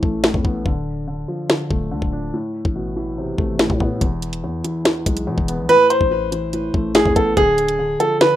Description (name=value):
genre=hip hop, drill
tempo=143 BPM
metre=4/4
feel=half-time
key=A harmonic minor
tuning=A4 = 439 Hz
part: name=felt-muted upright piano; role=accompaniment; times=0.0-8.4 s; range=E2 to D4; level=-24 LUFS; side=left 1 dB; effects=low-pass filter
part: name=growling 808-style bass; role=bass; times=0.0-8.0 s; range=D1 to B2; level=-27 LUFS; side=left 1 dB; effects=none
part: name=drill drum kit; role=drums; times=0.0-8.3 s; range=hi-hat, kick drum, snare drum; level=-18 LUFS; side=left 1 dB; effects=none
part: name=clear concert grand piano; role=melody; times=5.7-8.4 s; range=G#4 to C5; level=-15 LUFS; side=right 1 dB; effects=low-pass filter, ping-pong delay
room=digital ambience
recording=rough home demo mix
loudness=-17 LUFS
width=side -12 dB against mid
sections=0.0-8.4 A section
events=break 0.0-5.7; filter sweep 0.0-4.0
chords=0.0 Asus2; 0.7 Dm; 2.3 Amadd9; 4.0 E; 5.7 Amadd9; 7.4 Dm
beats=0.24 | 0.66 1.08 1.50 1.92 | 2.33 2.75 3.17 3.59 | 4.01 4.43 4.85 5.27 | 5.69 6.11 6.53 6.95 | 7.37 7.79 8.21